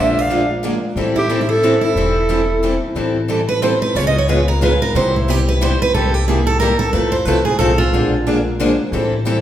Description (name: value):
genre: acoustic string swing (jazz manouche)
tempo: 181 BPM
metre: 3/4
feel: swing 59% on 8ths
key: A minor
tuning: A4 = 442 Hz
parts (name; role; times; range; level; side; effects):
- growling clarinet; melody; 0.0-2.8 s; G4 to F5; -19 LUFS; right 1 dB; none
- picked steel-string acoustic guitar; second line; 0.0-8.1 s; E4 to D#5; -19 LUFS; right 2 dB; none
- picked steel-string acoustic guitar; accompaniment; 0.0-9.4 s; C3 to A4; -20 LUFS; left 2 dB; none
- picked steel-string acoustic guitar; accompaniment; 0.0-9.4 s; C3 to Bb4; -23 LUFS; right 2 dB; none
- upright bass; bass; 0.0-9.4 s; E1 to F2; -20 LUFS; left 1 dB; none
room: wet recital hall reverb, RT60 1.7 s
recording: recorded in a church or concert hall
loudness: -14 LUFS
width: side -11 dB against mid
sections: 0.0-3.0 A section; 3.0-9.4 B section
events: steel-string acoustic guitar solo 3.0-9.4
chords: 0.0 Bb7; 1.0 Am7; 4.0 C#7; 4.9 Cmaj7; 5.9 C7; 6.9 Fmaj7; 7.9 Bb7